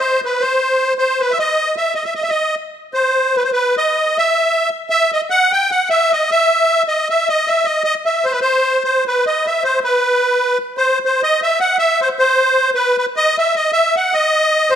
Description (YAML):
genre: balkan folk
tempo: 306 BPM (eighths)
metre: 5/8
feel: straight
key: unclear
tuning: A4 = 440 Hz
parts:
  - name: musette accordion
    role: solo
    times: 0.0-14.8 s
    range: B4 to G5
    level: -13 LUFS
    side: equal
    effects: none
room: moderate recital hall reverb, RT60 1.5 s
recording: none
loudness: -13 LUFS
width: side -9 dB against mid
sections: 0.0-2.9 A section; 2.9-10.8 A section; 10.8-14.8 B section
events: none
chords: none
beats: 0.19 0.39 0.58 0.78 | 0.97 1.17 1.36 1.56 1.76 | 1.95 2.15 2.35 2.54 2.74 | 2.93 3.13 3.33 3.52 3.72 | 3.91 4.11 4.30 4.50 4.70 | 4.89 5.09 5.29 5.48 5.68 | 5.87 6.07 6.27 6.46 6.66 | 6.85 7.05 7.25 7.44 7.64 | 7.83 8.03 8.23 8.42 8.62 | 8.81 9.01 9.21 9.40 9.60 | 9.79 9.99 10.19 10.38 10.58 | 10.77 10.97 11.16 11.36 11.56 | 11.75 11.95 12.14 12.34 12.53 | 12.73 12.92 13.12 13.31 13.51 | 13.71 13.90 14.10 14.29 14.49 | 14.68